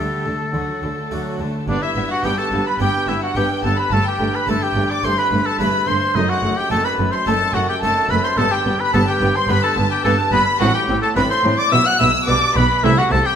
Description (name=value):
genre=classical, baroque-style concerto movement with solo episodes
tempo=108 BPM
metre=4/4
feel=straight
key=G major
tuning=A4 = 439 Hz
part: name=warm oboe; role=melody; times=0.0-13.4 s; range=D4 to F#5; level=-20 LUFS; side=left 2 dB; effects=none
part: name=warm studio violin section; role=melody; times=0.0-13.4 s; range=D5 to F#6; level=-23 LUFS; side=left 1 dB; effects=none
part: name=rich studio violin section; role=second line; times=0.0-13.4 s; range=F#4 to F#6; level=-25 LUFS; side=left 1 dB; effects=none
part: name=dark studio viola section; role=accompaniment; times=0.0-13.2 s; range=F#3 to C4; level=-26 LUFS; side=right 1 dB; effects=none
part: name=harpsichord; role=accompaniment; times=0.0-13.4 s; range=F#2 to B4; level=-26 LUFS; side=right 1 dB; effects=none
part: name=dark chamber double bass section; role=bass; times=0.0-13.2 s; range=F#1 to D2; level=-24 LUFS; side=right 2 dB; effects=none
part: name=warm chamber cello section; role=bass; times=0.0-13.2 s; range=F#2 to D3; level=-24 LUFS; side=right 2 dB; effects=none
room=wet recital hall reverb, RT60 1.7 s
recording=minimal, uncompressed stereo recording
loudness=-15 LUFS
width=side -8 dB against mid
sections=0.0-1.7 A section; 1.7-13.4 B section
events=none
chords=0.0 Dsus4; 0.5 D; 1.7 G; 3.9 Am7/G; 6.2 F#dim7; 8.4 G; 10.6 D5/A; 11.7 G/B; 12.8 Am7/C